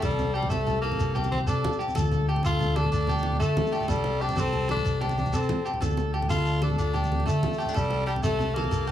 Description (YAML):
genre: highlife guitar band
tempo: 124 BPM (dotted quarters)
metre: 12/8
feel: straight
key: unclear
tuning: A4 = 436 Hz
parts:
  - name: raspy tenor saxophone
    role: melody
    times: 0.0-8.9 s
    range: G3 to F4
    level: -30 LUFS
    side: equal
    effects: plate reverb
  - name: picked steel-string acoustic guitar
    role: accompaniment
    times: 0.0-8.9 s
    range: A2 to C5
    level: -35 LUFS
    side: left 8 dB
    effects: plate reverb
  - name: electric guitar at the edge of break-up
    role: arpeggios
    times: 0.0-8.9 s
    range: G4 to A4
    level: -31 LUFS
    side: equal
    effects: slapback echo, plate reverb
  - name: fingered electric bass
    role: bass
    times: 0.0-8.9 s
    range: C2 to D3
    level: -28 LUFS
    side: equal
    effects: none
  - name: agogo bells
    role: percussion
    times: 0.0-8.9 s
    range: none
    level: -39 LUFS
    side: left 3 dB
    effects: none
  - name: congas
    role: percussion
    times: 0.0-8.9 s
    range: none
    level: -32 LUFS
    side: right 1 dB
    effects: none
  - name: shekere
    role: percussion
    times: 0.0-8.9 s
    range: none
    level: -31 LUFS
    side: equal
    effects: none
room: moderate small room reverb, RT60 0.5 s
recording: none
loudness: -23 LUFS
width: side -11 dB against mid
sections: 0.0-8.9 A section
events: none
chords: 0.0 C; 2.0 Dm; 3.9 Cadd9; 5.8 Dm; 7.8 C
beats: | 0.04 0.52 1.00 1.48 | 1.96 2.45 2.93 3.41 | 3.89 4.38 4.86 5.34 | 5.82 6.31 6.79 7.27 | 7.75 8.24 8.72